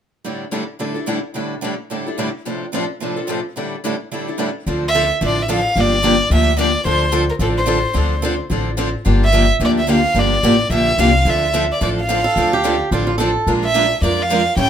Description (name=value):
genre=acoustic string swing (jazz manouche)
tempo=218 BPM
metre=4/4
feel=swing 58% on 8ths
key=D minor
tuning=A4 = 440 Hz
part: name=picked steel-string acoustic guitar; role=accompaniment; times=0.2-14.7 s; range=A2 to Bb4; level=-21 LUFS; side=left 3 dB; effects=none
part: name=picked steel-string acoustic guitar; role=accompaniment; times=0.2-14.7 s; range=A2 to Bb4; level=-23 LUFS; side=right 5 dB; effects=none
part: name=upright bass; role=bass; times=4.7-14.7 s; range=G1 to F2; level=-20 LUFS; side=left 1 dB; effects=none
part: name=warm violin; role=melody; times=4.9-14.7 s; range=A4 to G5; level=-17 LUFS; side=right 1 dB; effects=none
part: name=picked swing-style acoustic guitar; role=second line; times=12.2-13.5 s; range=F4 to A4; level=-20 LUFS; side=right 3 dB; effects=none
room=light reverb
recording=minimal, uncompressed stereo recording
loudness=-15 LUFS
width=side -9 dB against mid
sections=0.2-4.7 A section; 4.7-14.7 B section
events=none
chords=0.2 A7sus4; 2.5 Dm7/A; 3.6 A7sus4; 4.7 Dm7; 5.8 Gm7; 6.9 Dm7; 9.1 Gm7; 11.3 Dm7; 13.5 Bb7